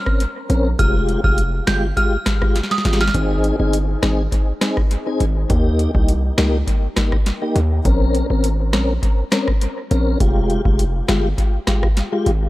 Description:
dancehall; 102 BPM; 4/4; straight; Ab major; A4 = 440 Hz
synth chime; melody; 0.0-3.1 s; Eb6 to G6; -24 LUFS; right 2 dB; ensemble chorus, dub echo
mellow tonewheel organ; accompaniment; 0.1-12.3 s; Ab3 to Bb4; -22 LUFS; left 2 dB; chorus vibrato, slow rotary speaker, sidechain pumping, dub echo
booming analog drum machine; drums; 0.1-12.4 s; hi-hat, kick drum, rim click, snare drum; -19 LUFS; equal; overdrive, dub echo
hard-hitting 808-style bass; bass; 0.5-12.5 s; F1 to Eb2; -18 LUFS; equal
little or no reverb; echo-heavy mix; -16 LUFS; side -17 dB against mid
0.0-3.1 A section; 3.1-12.5 B section
drum fill 2.6-3.1
0.0 Bbmadd9; 0.8 Fmadd9; 3.1 Ab; 5.5 Eb; 7.9 Bbmadd9; 10.2 Fmadd9
0.20 | 0.79 1.38 1.97 2.56 | 3.15 3.73 4.32 4.91 | 5.50 6.09 6.68 7.26 | 7.85 8.44 9.03 9.62 | 10.21 10.79 11.38 11.97

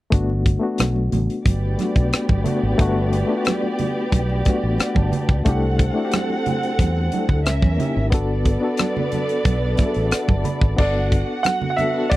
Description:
lush 1970s-style soul; 90 BPM; 4/4; straight; G major; A4 = 440 Hz
reed electric piano; accompaniment; 0.1-12.2 s; A3 to B5; -24 LUFS; left 3 dB; overdrive, fast tremolo
fingered electric bass; bass; 0.1-12.2 s; G1 to E2; -21 LUFS; equal
tight funk drum kit; drums; 0.1-12.2 s; crash cymbal, hi-hat, kick drum, rim click; -19 LUFS; equal
congas; percussion; 0.1-12.2 s; -28 LUFS; right 5 dB
dark studio violin section; second line; 1.5-12.2 s; B3 to F#5; -26 LUFS; right 2 dB
clear grand piano; melody; 10.8-12.2 s; D5 to F#5; -22 LUFS; right 2 dB
little or no reverb; dry, close 1970s-style studio recording; -18 LUFS; side -16 dB against mid
0.1-10.8 A section; 10.8-12.2 B section
reed electric piano fill 4.5-5.5, 9.5-10.8
0.1 Gmaj7; 5.5 C6; 7.5 C#dim7; 8.1 Gmaj9; 10.8 Gmaj7
| 0.12 0.79 1.46 2.12 | 2.79 3.46 4.12 4.79 | 5.46 6.12 6.79 7.46 | 8.12 8.79 9.46 10.12 | 10.79 11.45 12.12

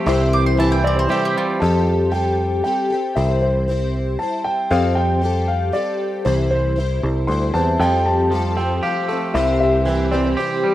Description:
rock; 116 BPM; 3/4; straight; F major; A4 = 441 Hz
dark upright piano; accompaniment; 0.0-1.6 s; G4 to E5; -30 LUFS; left 1 dB
picked plugged-in twelve-string acoustic guitar; accompaniment; 0.0-10.7 s; C3 to C5; -22 LUFS; left 2 dB; analog chorus
warm studio string section; sustained chords; 0.0-1.6, 7.8-10.7 s; E3 to C5; -32 LUFS; equal
twangy electric guitar; riff; 0.0-1.6, 7.8-10.7 s; C3 to G4; -22 LUFS; right 3 dB
picked electric bass; bass; 0.1-10.3 s; C2 to F2; -20 LUFS; equal
mandolin; second line; 0.3-1.6 s; F4 to D6; -24 LUFS; right 2 dB
warm grand piano; melody; 0.8-10.7 s; C5 to C6; -22 LUFS; left 1 dB; tape echo
little or no reverb; rough home demo mix; -16 LUFS; side -14 dB against mid
0.0-1.6 A section; 1.6-10.7 B section
mandolin solo 0.0-1.6
0.1 C; 1.6 Fadd9; 3.2 C; 4.7 Fadd9; 6.3 C; 7.8 Fadd9; 9.3 C
| 0.08 0.59 1.11 | 1.62 2.14 2.65 | 3.17 3.68 4.20 | 4.71 5.23 5.74 | 6.26 6.77 7.29 | 7.80 8.32 8.83 | 9.35 9.86 10.38

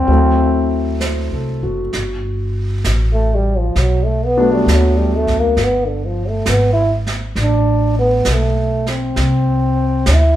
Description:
jazz ballad; 66 BPM; 4/4; swing 67% on 8ths; G major; A4 = 440 Hz
growling trombone; melody; 0.0-10.4 s; D3 to E4; -17 LUFS; equal
warm concert grand piano; accompaniment; 0.0-5.6 s; C3 to C5; -20 LUFS; left 1 dB
upright bass; bass; 0.0-10.4 s; F#1 to D2; -16 LUFS; equal
jazz brush drum kit; drums; 0.1-10.4 s; brushed snare drum, hi-hat, kick drum, snare drum; -24 LUFS; right 2 dB
moderate large studio reverb, RT60 1.1 s; band playing live in one room; -14 LUFS; side -12 dB against mid
0.0-1.9 A section; 1.9-10.4 B section
trombone solo 1.9-10.4
0.1 D7; 1.9 Gmaj9; 5.6 Gadd9; 9.2 Csus2
0.09 1.01 | 1.93 2.85 3.76 4.67 | 5.57 6.47 7.37 8.27 | 9.18 10.08

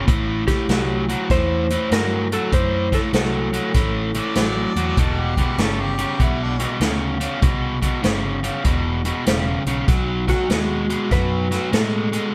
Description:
electric blues shuffle; 98 BPM; 4/4; swing 65% on 8ths; E minor; A4 = 440 Hz
biting overdriven guitar; riff; 0.0-12.3 s; E2 to G#3; -25 LUFS; equal
vintage muted fingered electric bass; bass; 0.1-12.2 s; E1 to A2; -28 LUFS; equal
swinging big-band drum kit; drums; 0.1-12.2 s; hi-hat, kick drum, snare drum; -24 LUFS; equal
clean lap steel guitar; melody; 0.5-4.7, 10.3-12.3 s; F#4 to C5; -28 LUFS; equal
clear harmonica; second line; 4.2-6.7 s; D4 to D5; -31 LUFS; equal; overdrive
light reverb; band playing live in one room; -20 LUFS; mono
0.0-12.3 A section
0.1 Am; 5.0 Em; 9.9 B7
| 0.07 0.69 1.30 1.91 | 2.52 3.13 3.75 4.36 | 4.97 5.58 6.20 6.81 | 7.42 8.04 8.65 9.27 | 9.88 10.50 11.11 11.73

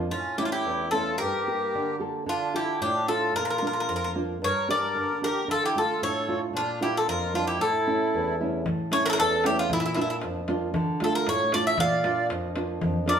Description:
greek folk, Greek bouzouki band; 113 BPM; 2/4; straight; A phrygian dominant; A4 = 439 Hz
nylon-string guitar; accompaniment; 0.0-13.2 s; E2 to Bb4; -29 LUFS; right 1 dB
Greek bouzouki; melody; 0.1-13.2 s; E4 to F5; -26 LUFS; equal
accordion; second line; 0.1-8.4, 11.8-13.2 s; C#4 to D5; -31 LUFS; equal; light tremolo tuning
darbuka; percussion; 8.7-13.2 s; -31 LUFS; left 1 dB
wet large studio reverb, RT60 0.9 s; band playing live in one room; -24 LUFS; side -8 dB against mid
0.1-8.7 A section; 8.7-13.2 B section
speeding up 0.0-13.2
0.1 A; 1.2 Gmadd9; 2.3 Dm; 3.4 Bb; 4.4 Gm; 5.5 Dm; 6.6 Bb; 7.6 A; 9.7 Bb; 10.7 Dm; 11.8 Bb
| 0.11 0.65 | 1.20 1.74 | 2.27 2.81 | 3.35 3.89 | 4.42 4.96 | 5.49 6.02 | 6.55 7.08 | 7.61 8.13 | 8.66 9.18 | 9.71 10.23 | 10.75 11.26 | 11.78 12.30 | 12.81

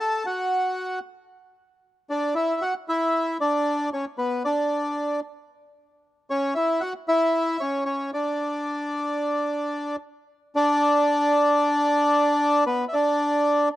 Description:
tango; 113 BPM; 4/4; rubato; A4 = 438 Hz
bandoneon; solo; 0.0-13.7 s; B3 to A5; -21 LUFS; equal
small room reverb; dry, close 1970s-style studio recording; -21 LUFS; side -15 dB against mid
0.0-10.5 A section; 10.5-13.8 B section
0.0 F#m; 1.0 N.C.; 2.1 Dmaj9; 4.2 Bm; 6.3 C#madd11; 8.4 N.C.; 12.7 Bm
0.50 1.02 1.55 | 2.08 2.61 3.14 3.67 | 4.19 4.72 5.24 5.76 | 6.29 6.81 7.34 7.87 | 8.40 8.93 9.46 10.00 | 10.54 11.07 11.61 12.14 | 12.67 13.20

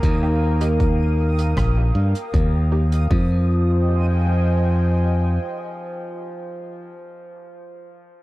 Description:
ambient dub; 78 BPM; 4/4; straight; F minor; A4 = 439 Hz
warm trombone; melody; 0.0-6.9 s; F3 to Bb3; -30 LUFS; equal; dub echo
warm analog pad; sustained chords; 0.0-6.9 s; F4 to Ab5; -30 LUFS; left 1 dB; chorus
modern bright fingered electric bass; bass; 0.0-5.4 s; Bb1 to G2; -18 LUFS; equal
electronic kick drum; drums; 0.0-3.3 s; -21 LUFS; equal
vintage brush drum kit; drums; 0.0-3.1 s; hi-hat, rim click; -37 LUFS; right 2 dB; dub echo
backwards swelling texture; texture; 0.0-3.1 s; Eb6; -37 LUFS; right 2 dB; built-in reverb
filtered dub chord stab; stabs; 0.2-7.1 s; Ab3 to G4; -35 LUFS; right 1 dB
small room ambience; dark, warm production; -17 LUFS; side -18 dB against mid
0.0-3.1 A section; 3.1-6.2 B section
0.0 Eb; 3.1 Fm7
| 0.03 0.80 1.57 2.34 | 3.10 3.87 4.64 5.41

